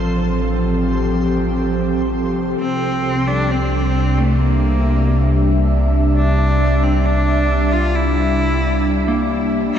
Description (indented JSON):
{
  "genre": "ambient",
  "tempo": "67 BPM",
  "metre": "4/4",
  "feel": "straight",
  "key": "C mixolydian",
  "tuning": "A4 = 440 Hz",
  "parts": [
    { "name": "airy breathy pad", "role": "sustained chords", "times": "0.0-9.8 s", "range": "C3 to E5", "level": "-18 LUFS", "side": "equal", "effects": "chorus, shimmer reverb" },
    { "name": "warm sub bass", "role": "bass", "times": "0.0-9.8 s", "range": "G1 to C2", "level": "-19 LUFS", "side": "equal", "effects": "none" },
    { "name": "organ-like drone", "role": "drone", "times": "2.5-9.8 s", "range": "none", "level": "barely audible", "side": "none", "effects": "none" },
    { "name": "backwards swelling texture", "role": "texture", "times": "0.0-2.6 s", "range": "C5 to C6", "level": "-34 LUFS", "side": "equal", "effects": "built-in reverb, shimmer reverb" },
    { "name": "clear cello", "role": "melody", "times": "2.6-9.8 s", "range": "A3 to F4", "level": "-21 LUFS", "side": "equal", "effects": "shimmer reverb, ping-pong delay" },
    { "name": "clean electric guitar", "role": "arpeggios", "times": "9.1-9.8 s", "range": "Bb3", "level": "-20 LUFS", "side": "left 3 dB", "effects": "none" }
  ],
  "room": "wet huge ambient reverb, RT60 8.0 s",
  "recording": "dark, warm production, nothing above 7.9 kHz",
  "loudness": "-15 LUFS",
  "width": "side -9 dB against mid",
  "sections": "0.0-2.6 A section; 2.6-9.8 B section",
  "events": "none",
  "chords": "0.0 F/A; 2.6 C",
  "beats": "0.79 1.69 | 2.58 3.48 4.38 5.27 | 6.17 7.06 7.96 8.85 | 9.75"
}